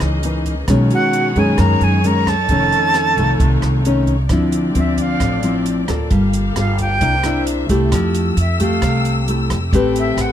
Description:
bossa nova; 133 BPM; 4/4; straight; D minor from 4.3 s; A4 = 440 Hz
jazz flute; melody; 0.0-10.3 s; E5 to Bb5; -19 LUFS; right 1 dB
wooden-headed alto flute; second line; 0.0-3.8 s; F#4 to Bb4; -25 LUFS; right 4 dB
nylon-string guitar; accompaniment; 0.0-10.3 s; F2 to B4; -18 LUFS; left 1 dB
rich studio string section; sustained chords; 0.0-10.3 s; A3 to E6; -26 LUFS; left 3 dB
upright bass; bass; 0.0-10.3 s; F1 to F#2; -19 LUFS; equal
compact cocktail drum kit; drums; 0.0-10.3 s; hi-hat, kick drum, rim click; -23 LUFS; equal
little or no reverb; close, detailed microphones; -14 LUFS; side -10 dB against mid
0.0-4.3 A section; 4.3-10.3 B section
flute solo 4.3-10.3
0.0 Gb13 (rootless); 0.7 B69; 2.5 F7b13; 4.3 Dm9; 6.1 Gm9; 7.0 C9; 7.9 Fmaj9; 9.7 Am9
0.23 | 0.69 1.14 1.59 2.04 | 2.49 2.94 3.40 3.85 | 4.30 4.75 5.21 5.66 | 6.11 6.56 7.01 7.47 | 7.92 8.37 8.82 9.27 | 9.73 10.18

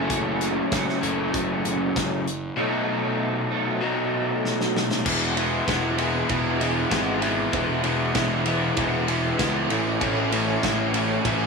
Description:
indie rock; 97 BPM; 4/4; straight; E major; A4 = 440 Hz
overdriven electric guitar; riff; 0.0-11.5 s; F#2 to E4; -26 LUFS; left 8 dB
raw garage guitar; riff; 0.0-11.5 s; F#2 to E4; -26 LUFS; right 7 dB; overdrive, ensemble chorus, tape echo
fuzz picked electric bass; bass; 0.0-11.5 s; E1 to C#2; -28 LUFS; right 1 dB; overdrive
loose indie drum kit; drums; 0.1-11.4 s; crash cymbal, hi-hat, kick drum, ride cymbal, snare drum; -27 LUFS; right 2 dB
small room ambience; -21 LUFS; side -4 dB against mid
0.0-5.1 A section; 5.1-11.5 B section
drum fill 4.4-5.1
0.0 F#m; 2.6 B7; 5.1 E; 9.7 A
| 0.10 0.72 1.34 1.96 | 2.58 3.20 3.82 4.44 | 5.06 5.68 6.29 6.92 | 7.53 8.15 8.77 9.39 | 10.01 10.63 11.25

